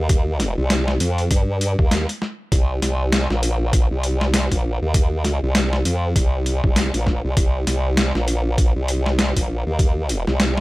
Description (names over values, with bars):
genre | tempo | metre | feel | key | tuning
glitch hop | 99 BPM | 4/4 | swing 59% on 16ths | C minor | A4 = 439 Hz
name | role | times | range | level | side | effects
formant-sweep wobble bass | bass | 0.0-10.6 s | Bb1 to G2 | -20 LUFS | equal | chorus
boom bap sampler-style drum kit | drums | 0.1-10.6 s | hi-hat, snare drum | -22 LUFS | equal | overdrive, small room ambience
electronic kick drum | drums | 0.1-9.9 s | none | -17 LUFS | equal | overdrive, small room ambience
room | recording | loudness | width
little or no reverb | none | -17 LUFS | side -20 dB against mid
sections
0.0-10.6 A section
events
break 1.9-2.5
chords
none